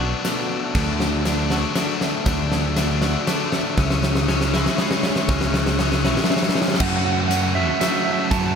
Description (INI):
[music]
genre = post-rock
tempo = 119 BPM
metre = 3/4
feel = straight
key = F# minor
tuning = A4 = 440 Hz
[part]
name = clear studio string section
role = sustained chords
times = 0.0-8.6 s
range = F#4 to C#6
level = -33 LUFS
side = right 2 dB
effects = none
[part]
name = twelve-string electric guitar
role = arpeggios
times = 0.0-6.8 s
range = B2 to F#4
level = -29 LUFS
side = equal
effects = analog delay
[part]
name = biting overdriven guitar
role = riff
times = 0.0-8.6 s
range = B2 to F#4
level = -24 LUFS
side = left 6 dB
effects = none
[part]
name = growling fingered electric bass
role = bass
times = 0.0-8.6 s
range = B1 to F#2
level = -23 LUFS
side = right 1 dB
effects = overdrive
[part]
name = big rock drum kit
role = drums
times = 0.2-8.4 s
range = crash cymbal, hi-hat, kick drum, snare drum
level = -22 LUFS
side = equal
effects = none
[part]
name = lightly driven lead guitar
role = melody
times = 6.8-8.5 s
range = E5 to A5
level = -24 LUFS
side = right 8 dB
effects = none
[part]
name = distorted electric guitar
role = riff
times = 6.8-8.6 s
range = F#2 to F#3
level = -26 LUFS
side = right 16 dB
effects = distortion
[sound]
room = light reverb, small room ambience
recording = none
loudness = -18 LUFS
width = side -6 dB against mid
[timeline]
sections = 0.0-6.8 A section; 6.8-8.6 B section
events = build-up 0.0-6.8; drum fill 0.0-6.8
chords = 0.0 Bm7; 0.8 Dadd9; 3.8 C#m; 6.8 F#m7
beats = 0.25 | 0.75 1.26 1.76 | 2.27 2.77 3.27 | 3.78 4.28 4.79 | 5.29 5.79 6.30 | 6.80 7.30 7.81 | 8.31